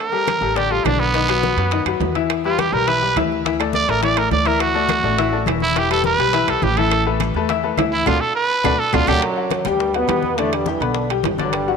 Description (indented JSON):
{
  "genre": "latin, salsa",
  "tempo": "208 BPM",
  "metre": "4/4",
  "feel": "straight",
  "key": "unclear",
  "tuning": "A4 = 438 Hz",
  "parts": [
    { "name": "growling trumpet", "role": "melody", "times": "0.0-9.2 s", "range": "B3 to D5", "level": "-20 LUFS", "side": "right 4 dB", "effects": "none" },
    { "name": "bright baby grand piano", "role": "accompaniment", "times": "0.1-11.8 s", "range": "D3 to B5", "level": "-21 LUFS", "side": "left 11 dB", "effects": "none" },
    { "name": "bongos", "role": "percussion", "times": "0.1-11.7 s", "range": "none", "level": "-31 LUFS", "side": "left 11 dB", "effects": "none" },
    { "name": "congas", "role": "percussion", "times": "0.1-11.8 s", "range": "none", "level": "-30 LUFS", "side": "left 9 dB", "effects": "none" },
    { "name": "claves", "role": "percussion", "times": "0.3-9.1 s", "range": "none", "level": "-31 LUFS", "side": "right 16 dB", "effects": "none" },
    { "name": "timbales", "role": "percussion", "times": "0.3-11.7 s", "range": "none", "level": "-27 LUFS", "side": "right 17 dB", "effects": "none" },
    { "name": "upright bass", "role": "bass", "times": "0.4-11.8 s", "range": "E1 to F#2", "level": "-24 LUFS", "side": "right 2 dB", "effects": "none" },
    { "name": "clear trombone section", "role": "melody", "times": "9.1-11.8 s", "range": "F#2 to E4", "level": "-23 LUFS", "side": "right 3 dB", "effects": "none" }
  ],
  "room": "moderate plate reverb, RT60 3.0 s",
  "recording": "1960s-style stereo with parts hard left and right",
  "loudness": "-16 LUFS",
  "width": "side -6 dB against mid",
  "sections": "0.0-9.2 A section; 9.2-11.8 B section",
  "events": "trumpet solo 0.0-9.2; drum fill 8.1-9.2; band accent 8.1-9.2",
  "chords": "0.0 Dsus4; 1.1 B; 2.3 Em7; 3.5 Dadd9; 5.8 Em; 6.9 Asus2; 8.1 D; 9.2 Gmaj7; 10.4 Em7",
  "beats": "0.28 0.56 0.85 | 1.14 1.43 1.72 2.01 | 2.30 2.59 2.88 3.17 | 3.46 3.74 4.03 4.32 | 4.61 4.90 5.19 5.48 | 5.76 6.05 6.34 6.63 | 6.92 7.21 7.49 7.78 | 8.07 8.36 8.65 8.94 | 9.22 9.51 9.80 10.09 | 10.38 10.67 10.96 11.24 | 11.53"
}